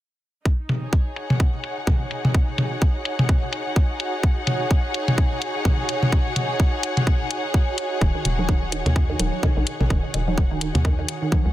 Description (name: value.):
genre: minimal techno.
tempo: 127 BPM.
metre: 4/4.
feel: swing 58% on 16ths.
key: Eb minor.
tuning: A4 = 440 Hz.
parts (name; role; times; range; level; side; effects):
electronic kick drum; drums; 0.5-11.4 s; none; -19 LUFS; equal; none.
dark symphonic string section; texture; 0.5-11.5 s; Eb4 to Gb5; -28 LUFS; left 1 dB; sidechain pumping.
swarming drone; texture; 1.8-11.5 s; Gb4; -37 LUFS; right 5 dB; built-in reverb, sidechain pumping.
electronic hi-hat; drums; 0.7-11.2 s; none; -27 LUFS; left 2 dB; low-pass filter on hats.
electronic toms and congas; percussion; 0.7-11.4 s; none; -25 LUFS; equal; digital delay.
resonant blip pluck; riff; 8.0-11.4 s; Eb3; -29 LUFS; right 2 dB; phaser, sidechain pumping, digital delay.
hollow knocking FM bass; bass; 8.0-11.5 s; Eb1 to Eb2; -24 LUFS; equal; sidechain pumping.
room: little or no reverb.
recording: dense, heavily limited modern master.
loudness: -20 LUFS.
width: side -14 dB against mid.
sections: 0.5-11.5 A section.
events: none.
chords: 0.5 Ebm.